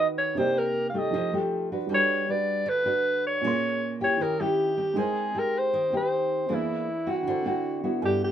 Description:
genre	bossa nova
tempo	157 BPM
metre	4/4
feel	straight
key	unclear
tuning	A4 = 443 Hz
part	breathy alto saxophone	melody	0.0-8.3 s	E4 to F5	-25 LUFS	equal	none
part	nylon-string guitar	accompaniment	0.0-8.3 s	G2 to Cb5	-29 LUFS	left 1 dB	none
part	warm baby grand piano	accompaniment	0.0-8.3 s	Bb2 to C6	-34 LUFS	right 6 dB	none
room	moderate studio reverb, RT60 0.5 s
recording	minimal, uncompressed stereo recording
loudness	-24 LUFS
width	side -10 dB against mid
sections	0.0-8.0 A section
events	none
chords	0.4 Cm7; 1.1 F9; 1.9 Gmaj7; 3.4 Bbm9; 4.2 Eb7b9; 5.0 Abmaj7; 6.5 E7#11; 7.3 D9

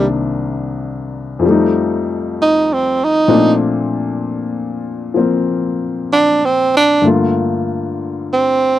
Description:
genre	jazz ballad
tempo	65 BPM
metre	4/4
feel	swing 68% on 8ths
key	unclear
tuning	A4 = 440 Hz
part	breathy tenor saxophone	melody	0.0-8.8 s	C4 to Eb4	-12 LUFS	right 2 dB	none
part	warm baby grand piano	accompaniment	0.0-8.8 s	C2 to F4	-16 LUFS	left 3 dB	none
room	light reverb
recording	dry, close 1970s-style studio recording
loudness	-13 LUFS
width	side -13 dB against mid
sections	0.0-8.8 A section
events	tenor saxophone solo 0.0-8.8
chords	0.0 Cm7; 1.4 F9; 3.3 Bbmaj9; 7.0 Gm7

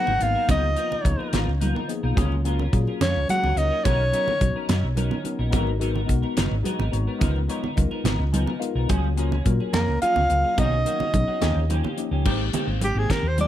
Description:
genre	electric jazz fusion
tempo	71 BPM (dotted quarters)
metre	6/8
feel	straight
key	unclear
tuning	A4 = 443 Hz
part	breathy soprano saxophone	melody	0.0-4.7, 9.7-13.5 s	G4 to F#5	-24 LUFS	equal	tape echo
part	hollow-body jazz guitar	second line	0.0-4.7, 9.7-11.7 s	A#3 to F#4	-33 LUFS	right 2 dB	none
part	tine electric piano	accompaniment	0.0-13.5 s	E#3 to G#5	-30 LUFS	left 5 dB	overdrive, phaser
part	clean electric guitar	stabs	0.0-13.5 s	D#3 to A#4	-32 LUFS	equal	analog chorus
part	hollow-body short-scale fingered electric bass	bass	0.1-13.5 s	F#1 to A#2	-24 LUFS	equal	none
part	congas	percussion	0.1-13.5 s	none	-30 LUFS	right 4 dB	none
part	damped 70s drum kit	drums	0.2-13.5 s	crash cymbal, hi-hat, kick drum, snare drum	-26 LUFS	equal	none
room	light reverb, small room ambience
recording	none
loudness	-20 LUFS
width	side -12 dB against mid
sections	0.0-12.3 A section; 12.3-13.5 B section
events	tine electric piano fill 8.1-8.9; soprano saxophone solo 12.3-13.5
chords	0.5 C#13; 2.2 F#maj9/C#; 3.9 Bmaj9; 5.5 G#m9; 7.2 C#13; 8.9 F#maj9/C#; 10.6 Bmaj9; 11.4 D#7; 12.3 Abmaj9

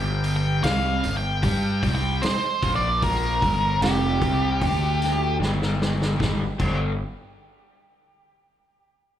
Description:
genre	blues rock power trio and southern rock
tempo	76 BPM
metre	4/4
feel	straight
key	G minor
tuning	A4 = 444 Hz
part	octave-fuzz lead guitar	melody	0.0-5.4 s	G4 to G5	-26 LUFS	equal	distortion, slapback echo, analog delay
part	raw garage guitar	riff	0.0-6.9 s	F2 to G4	-28 LUFS	equal	overdrive, phaser, slapback echo
part	fuzz fingered electric bass	bass	0.0-7.0 s	F1 to G2	-25 LUFS	equal	overdrive
part	vintage drum kit	drums	0.2-6.8 s	crash cymbal, hi-hat, kick drum, snare drum	-28 LUFS	equal	none
room	little or no reverb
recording	live gig heard through the venue's PA, club reverb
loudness	-20 LUFS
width	side -10 dB against mid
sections	0.0-6.2 A section; 6.2-9.2 B section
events	drum fill 5.4-6.2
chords	0.0 G5; 2.6 Bb5; 3.4 G5; 4.6 D5; 5.4 G5

